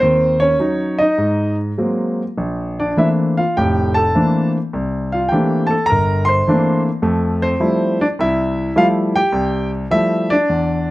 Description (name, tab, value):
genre	solo jazz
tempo	103 BPM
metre	4/4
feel	swing 68% on 8ths, rubato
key	F major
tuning	A4 = 440 Hz
part	warm concert grand piano	solo	0.0-10.9 s	F1 to C6	-14 LUFS	equal	none
room	light reverb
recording	close, detailed microphones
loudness	-15 LUFS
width	side -18 dB against mid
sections	0.0-10.9 A section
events	none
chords	0.0 Ebm7; 1.2 Ab9; 2.4 Bbmaj9#11; 4.7 C13; 7.0 Fmaj9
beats	| 0.02 0.60 1.19 1.79 | 2.39 2.98 3.57 4.15 | 4.73 5.31 5.89 6.46 | 7.03 7.61 8.18 8.76 | 9.33 9.91 10.50